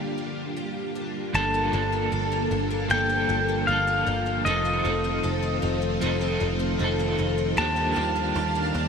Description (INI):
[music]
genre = dream pop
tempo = 77 BPM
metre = 4/4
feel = straight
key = unclear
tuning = A4 = 442 Hz
[part]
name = string machine, full ensemble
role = sustained chords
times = 0.0-8.9 s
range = D3 to A4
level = -30 LUFS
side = equal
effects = ensemble chorus
[part]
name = picked twelve-string acoustic guitar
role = arpeggios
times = 0.0-8.9 s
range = F3 to A4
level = -30 LUFS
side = left 4 dB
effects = ensemble chorus, digital delay
[part]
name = electric guitar at the edge of break-up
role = accompaniment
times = 1.3-8.9 s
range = G2 to A4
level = -31 LUFS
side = right 3 dB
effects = tremolo, wide subtle chorus
[part]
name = picked electric bass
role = bass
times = 1.3-8.9 s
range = F1 to Eb2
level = -29 LUFS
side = equal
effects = none
[part]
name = pedal steel guitar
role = melody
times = 1.4-8.9 s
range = Eb5 to A5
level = -26 LUFS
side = equal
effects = digital delay
[part]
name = twinkling granular texture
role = texture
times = 7.9-8.9 s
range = F5 to A5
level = -33 LUFS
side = right 4 dB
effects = built-in reverb, digital delay
[sound]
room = moderate huge ambient reverb, RT60 4.7 s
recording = none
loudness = -22 LUFS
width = side -6 dB against mid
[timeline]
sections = 0.0-1.3 A section; 1.3-8.9 B section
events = break 0.0-1.3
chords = 0.0 Bb6; 1.3 Gm9; 4.5 F7; 7.6 Ebmaj9